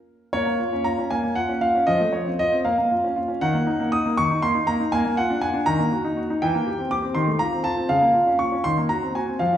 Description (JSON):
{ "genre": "classical-period piano sonatina", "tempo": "80 BPM (dotted quarters)", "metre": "6/8", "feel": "rubato", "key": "Bb minor", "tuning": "A4 = 440 Hz", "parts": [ { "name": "clear grand piano", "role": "solo", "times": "0.3-9.6 s", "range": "Db3 to Eb6", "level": "-20 LUFS", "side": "equal", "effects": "none" } ], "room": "wet recital hall reverb, RT60 1.8 s", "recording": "heard from further back in the room", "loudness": "-20 LUFS", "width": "side -10 dB against mid", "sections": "0.3-9.6 A section", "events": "none", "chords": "0.3 Bbm; 1.9 F; 2.7 Bbm; 3.4 Ebm; 4.9 Bb; 5.7 Ebm; 6.4 C7/E; 7.2 F7/Eb; 7.9 Bbm/Db; 8.6 Cm7b5/Eb", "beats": "| 0.33 1.11 | 1.88 2.65 | 3.41 4.17 | 4.93 5.67 | 6.42 7.15 | 7.89 8.64 | 9.40" }